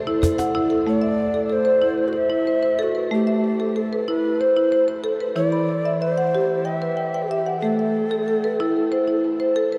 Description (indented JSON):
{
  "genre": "world meditative, meditative tuned percussion",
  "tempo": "187 BPM (eighths)",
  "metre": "7/8",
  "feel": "straight",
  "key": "A dorian",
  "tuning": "A4 = 438 Hz",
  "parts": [
    { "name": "mellow Native American-style cedar flute", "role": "melody", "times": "0.0-9.2 s", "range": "F#4 to E5", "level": "-26 LUFS", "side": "equal", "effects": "shimmer reverb, delay" },
    { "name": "marimba with medium mallets", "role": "arpeggios", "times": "0.0-9.8 s", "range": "E3 to B5", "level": "-23 LUFS", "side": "equal", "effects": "shimmer reverb, delay" },
    { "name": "cajon", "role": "percussion", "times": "0.2-0.5 s", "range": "none", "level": "-32 LUFS", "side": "equal", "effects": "none" }
  ],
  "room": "wet cathedral reverb, RT60 7.3 s",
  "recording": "in a vast, echoing space",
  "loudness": "-21 LUFS",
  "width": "mono",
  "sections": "0.9-9.8 A section",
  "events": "none",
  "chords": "0.0 A5; 0.9 Am; 5.4 Em; 7.6 Am"
}